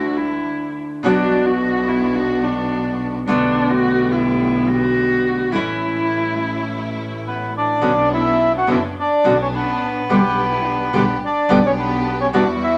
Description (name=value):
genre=tango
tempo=106 BPM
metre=4/4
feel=rubato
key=B minor from 7.8 s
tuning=A4 = 443 Hz
part: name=dark cello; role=second line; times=0.0-11.1 s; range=D4 to G4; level=-24 LUFS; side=equal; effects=none
part: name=nylon-string guitar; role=accompaniment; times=0.0-12.4 s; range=B2 to G4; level=-22 LUFS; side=equal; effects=none
part: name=rich symphonic string section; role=stabs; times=0.0-12.8 s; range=G3 to G4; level=-30 LUFS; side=equal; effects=none
part: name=clear double bass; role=bass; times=0.0-12.8 s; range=F#1 to E2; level=-29 LUFS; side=equal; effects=none
part: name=bandoneon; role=melody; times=7.3-12.8 s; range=B3 to F#5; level=-20 LUFS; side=equal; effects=none
room=moderate studio reverb, RT60 0.9 s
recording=none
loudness=-18 LUFS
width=mono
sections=0.0-7.8 A section; 7.8-12.8 B section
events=cello solo 0.0-7.8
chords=0.0 Dsus2; 1.0 Bm; 3.3 Gadd9/B; 5.5 A; 7.8 Bmadd9; 10.1 G/B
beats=0.47 | 1.04 1.60 2.17 2.73 | 3.29 3.85 4.41 4.97 | 5.54 6.11 6.67 7.25 | 7.82 8.39 8.96 9.53 | 10.09 10.65 11.22 11.78 | 12.34